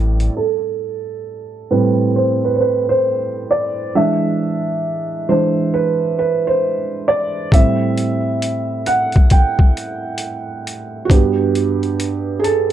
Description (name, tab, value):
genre	lo-fi hip hop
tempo	67 BPM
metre	4/4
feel	swing 64% on 16ths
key	A dorian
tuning	A4 = 440 Hz
part	felt-muted upright piano	accompaniment	0.0-12.7 s	G2 to G5	-16 LUFS	right 2 dB	low-pass filter
part	boom bap sampler-style drum kit	drums	0.2-0.3, 7.5-12.7 s	hi-hat, kick drum	-13 LUFS	left 1 dB	overdrive
room	moderate studio reverb, RT60 0.5 s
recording	dark, warm production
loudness	-15 LUFS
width	side -11 dB against mid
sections	0.4-12.7 A section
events	felt piano solo 0.4-12.7; filter sweep on felt piano 0.4-12.7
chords	0.4 Am7; 3.9 E7; 7.5 Am7; 11.1 Gmaj7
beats	| 0.35 1.25 2.15 3.04 | 3.94 4.83 5.73 6.62 | 7.52 8.41 9.31 10.21 | 11.10 12.00